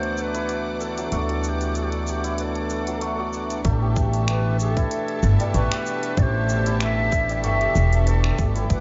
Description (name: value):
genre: organic downtempo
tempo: 95 BPM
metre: 4/4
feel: swing 55% on 16ths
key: unclear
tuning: A4 = 443 Hz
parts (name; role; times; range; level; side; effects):
- ney; melody; 0.0-8.8 s; G4 to F#5; -31 LUFS; equal; analog delay
- hand-pumped harmonium; accompaniment; 0.0-8.8 s; B2 to F#5; -31 LUFS; equal; sidechain pumping, analog delay
- bright symphonic string section; sustained chords; 0.0-8.8 s; G4 to D6; -39 LUFS; equal; sidechain pumping
- santur; arpeggios; 0.0-8.8 s; F#3 to A4; -33 LUFS; equal; analog delay
- upright bass; bass; 0.0-8.8 s; E1 to D2; -25 LUFS; equal; sidechain pumping
- organic electronic drum kit; drums; 0.0-8.8 s; finger snaps, hi-hat, shaker; -36 LUFS; equal; overdrive, low-pass filter on hats, low-pass filter on perc, low-pass filter on snare, low-pass filter on room
- electronic kick drum; drums; 3.6-8.8 s; none; -26 LUFS; equal; overdrive
room: light reverb, small room ambience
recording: echo-heavy mix, nothing above 7.6 kHz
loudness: -23 LUFS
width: mono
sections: 0.0-3.6 A section; 3.6-8.8 B section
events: none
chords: 0.0 D; 3.6 A7(no3)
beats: 0.49 | 1.12 1.75 2.38 3.02 | 3.65 4.28 4.91 5.54 | 6.17 6.80 7.44 8.07 | 8.70